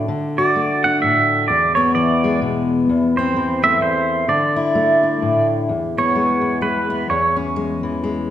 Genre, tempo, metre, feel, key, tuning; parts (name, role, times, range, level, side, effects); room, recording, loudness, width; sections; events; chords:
acoustic folk duo or small band; 129 BPM; 3/4; swing 59% on 8ths; E mixolydian; A4 = 442 Hz
fingerpicked steel-string acoustic guitar; accompaniment; 0.0-8.3 s; E2 to F#4; -18 LUFS; left 2 dB
pedal steel guitar; second line; 0.4-7.4 s; B4 to F#5; -18 LUFS; right 3 dB
wet recital hall reverb, RT60 1.4 s; -15 LUFS; side -11 dB against mid
0.0-5.7 A section; 5.7-8.3 B section
pedal steel guitar solo 0.0-5.7, 5.7-8.3
0.0 D; 1.5 E; 2.9 Amadd9/E; 4.3 Dsus2; 5.7 E; 7.1 C#m/E